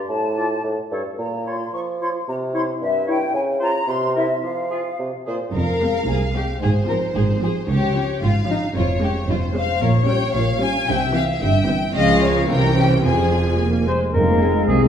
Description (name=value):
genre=cinematic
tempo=111 BPM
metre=2/4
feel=straight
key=F minor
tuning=A4 = 435 Hz
part: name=bright large flute ensemble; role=second line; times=0.1-5.0, 14.2-14.9 s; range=E5 to Db6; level=-25 LUFS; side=left 2 dB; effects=none
part: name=mellow bassoon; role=accompaniment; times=0.1-5.4, 14.2-14.9 s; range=G2 to Ab3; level=-24 LUFS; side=right 1 dB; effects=none
part: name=mellow oboe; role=second line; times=0.4-5.4, 13.9-14.8 s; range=Ab4 to D5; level=-28 LUFS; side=left 1 dB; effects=none
part: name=warm clarinet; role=second line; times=0.4-5.4, 14.2-14.9 s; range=C4 to A4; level=-30 LUFS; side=left 2 dB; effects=none
part: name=rich studio violin section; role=second line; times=5.3-14.6 s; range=C4 to Ab5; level=-23 LUFS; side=left 4 dB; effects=none
part: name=rich studio violin section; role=melody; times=5.5-14.6 s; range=Bb4 to Ab5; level=-27 LUFS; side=left 3 dB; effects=none
part: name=rich studio cello section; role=bass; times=5.5-14.9 s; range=C2 to Db3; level=-22 LUFS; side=right 2 dB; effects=none
part: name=rich studio double bass section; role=bass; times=5.6-14.9 s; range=F1 to Db2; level=-23 LUFS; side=right 2 dB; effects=none
part: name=rich studio viola section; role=accompaniment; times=5.8-14.9 s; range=E3 to Db4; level=-24 LUFS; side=right 1 dB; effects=none
part: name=marimba with medium mallets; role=melody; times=13.9-14.9 s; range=Ab4 to C5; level=-24 LUFS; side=left 4 dB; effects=none
part: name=dark French horn section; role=sustained chords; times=14.1-14.9 s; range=Ab3 to C4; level=-23 LUFS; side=left 6 dB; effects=none
part: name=mellow tuba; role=bass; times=14.2-14.9 s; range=F1 to C2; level=-23 LUFS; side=right 2 dB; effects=none
room=wet recital hall reverb, RT60 1.5 s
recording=heard from further back in the room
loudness=-18 LUFS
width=side -8 dB against mid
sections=0.0-5.5 A section; 5.5-14.2 B section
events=none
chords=0.1 N.C.; 1.2 Bbm; 2.3 C; 3.3 N.C.; 3.9 C; 4.4 N.C.; 5.5 Fm; 6.6 Fm/Ab; 7.7 Db; 8.8 Db/F; 9.8 Gdim/Bb; 10.9 C; 12.0 Db; 12.5 C7b9; 13.1 Fm